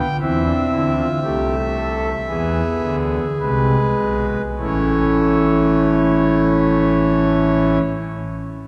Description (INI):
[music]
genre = classical, baroque-style 4-part fugue for pipe organ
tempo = 49-60 BPM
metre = 4/4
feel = straight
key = unclear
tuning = A4 = 438 Hz
[part]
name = pipe organ, foundations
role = solo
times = 0.0-7.8 s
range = A1 to G5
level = -18 LUFS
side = equal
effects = none
[sound]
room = wet church reverb, RT60 3.6 s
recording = dark, warm production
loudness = -18 LUFS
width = mono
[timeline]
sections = 0.0-4.6 A section; 4.6-8.7 B section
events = slowing down 0.0-4.6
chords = 0.2 Am; 2.3 E7; 4.6 A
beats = | 0.20 1.22 2.28 3.40 | 4.58 5.80 7.03